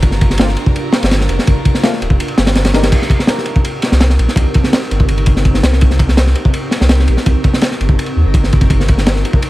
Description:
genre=drum and bass, jungle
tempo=166 BPM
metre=4/4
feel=straight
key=C minor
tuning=A4 = 440 Hz
part: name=granular cloud pad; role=sustained chords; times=0.0-9.5 s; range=C4 to Bb4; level=-22 LUFS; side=equal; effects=built-in reverb
part: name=saturated sub bass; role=bass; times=0.0-9.2 s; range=D1 to Eb2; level=-13 LUFS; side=equal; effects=none
part: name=crunchy breakbeat drum kit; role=drums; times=0.0-9.5 s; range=crash cymbal, kick drum, ride cymbal, snare drum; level=-12 LUFS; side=equal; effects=none
part: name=drifting glass-harmonics texture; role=texture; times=0.0-2.9 s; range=Bb5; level=-32 LUFS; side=right 1 dB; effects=chorus, built-in reverb
part: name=deep mellow chord stab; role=stabs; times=0.4-3.1 s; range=A3 to Bb4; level=-23 LUFS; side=left 2 dB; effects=chorus, dub echo
room=small room ambience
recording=vinyl crackle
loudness=-10 LUFS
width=side -17 dB against mid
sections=0.0-2.9 A section; 2.9-9.5 A section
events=drop 0.0-2.9, 2.9-9.5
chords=0.0 Gm7; 2.9 Cm7; 8.7 Gm7

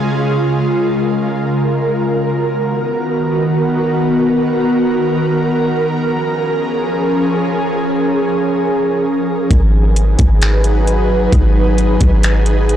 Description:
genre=hip hop, atmospheric cloud-rap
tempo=free time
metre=none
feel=none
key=G# dorian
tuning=A4 = 440 Hz
part: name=ethereal airy pad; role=sustained chords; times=0.0-12.8 s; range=C#3 to B4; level=-14 LUFS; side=equal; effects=ensemble chorus, built-in reverb, sidechain pumping
part: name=clean 808-style bass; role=bass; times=9.5-12.8 s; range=G#1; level=-13 LUFS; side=equal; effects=none
part: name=trap drum kit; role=drums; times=9.5-12.8 s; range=finger snaps, hi-hat, kick drum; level=-16 LUFS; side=equal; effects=overdrive, vintage 12-bit sampler grit, soft clipping on snare
room=light reverb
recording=blown-out, overdriven recording, overdrive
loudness=-13 LUFS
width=side -10 dB against mid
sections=0.0-12.8 A section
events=none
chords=0.0 C#; 2.2 Bmaj7; 5.9 A#m7; 9.5 G#m7

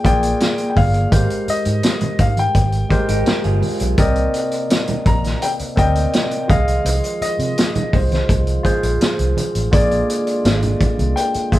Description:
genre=lush 1970s-style soul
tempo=84 BPM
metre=4/4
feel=straight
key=unclear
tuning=A4 = 440 Hz
part: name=warm concert grand piano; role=melody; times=0.0-11.6 s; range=C5 to Bb5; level=-23 LUFS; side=left 2 dB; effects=none
part: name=barky tine electric piano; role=accompaniment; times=0.0-11.6 s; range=Ab3 to E5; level=-22 LUFS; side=equal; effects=overdrive
part: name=vintage muted fingered electric bass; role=bass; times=0.0-11.6 s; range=G1 to C3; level=-19 LUFS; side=equal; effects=none
part: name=vintage drum kit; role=drums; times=0.0-11.6 s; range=hi-hat, kick drum, snare drum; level=-19 LUFS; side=equal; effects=none
part: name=congas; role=percussion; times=0.1-11.6 s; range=none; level=-26 LUFS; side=right 1 dB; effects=none
part: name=electric guitar through a small old amp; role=riff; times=3.1-4.0 s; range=Eb4 to Bb4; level=-26 LUFS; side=right 4 dB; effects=none
part: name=tonewheel organ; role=sustained chords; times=4.0-11.6 s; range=C3 to F4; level=-29 LUFS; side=right 1 dB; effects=slow rotary speaker
room=moderate studio reverb, RT60 0.5 s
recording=band playing live in one room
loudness=-15 LUFS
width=side -15 dB against mid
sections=0.0-11.6 A section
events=none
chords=0.0 Bb7; 1.1 Abmaj9; 4.0 Cm9; 6.5 Fm7/C; 9.7 Bb7

